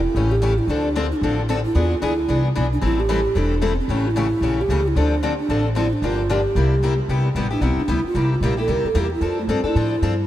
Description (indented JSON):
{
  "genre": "acoustic string swing (jazz manouche)",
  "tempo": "225 BPM",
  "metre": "4/4",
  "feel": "swing 56% on 8ths",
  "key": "C major from 7.1 s",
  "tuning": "A4 = 442 Hz",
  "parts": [
    { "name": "hollow bass ocarina", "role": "melody", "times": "0.0-10.3 s", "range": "A3 to Bb4", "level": "-23 LUFS", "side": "right 2 dB", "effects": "tape echo" },
    { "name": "upright bass", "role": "bass", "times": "0.0-10.3 s", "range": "E1 to A2", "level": "-21 LUFS", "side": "equal", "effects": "none" },
    { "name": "picked steel-string acoustic guitar", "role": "accompaniment", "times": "0.2-10.1 s", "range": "C3 to A4", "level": "-23 LUFS", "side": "left 4 dB", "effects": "wide subtle chorus" }
  ],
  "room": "light reverb, studio reverb",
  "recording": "vinyl crackle",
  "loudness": "-18 LUFS",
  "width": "side -13 dB against mid",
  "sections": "0.0-7.1 A section; 7.1-10.3 B section",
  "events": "ocarina solo 7.1-10.3",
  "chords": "0.2 A7; 0.7 Dm7; 1.8 E7b9; 2.8 Am7; 3.9 A7b9; 5.0 Dm7; 6.0 Gm7; 6.6 C7; 7.1 Cmaj9; 8.2 C7; 9.2 F69",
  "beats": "0.15 0.42 | 0.69 0.95 1.22 1.49 | 1.75 2.02 2.29 2.55 | 2.82 3.09 3.35 3.62 | 3.89 4.15 4.42 4.69 | 4.95 5.22 5.49 5.75 | 6.02 6.29 6.55 6.82 | 7.09 7.36 7.62 7.89 | 8.16 8.43 8.69 8.96 | 9.23 9.49 9.76 10.03"
}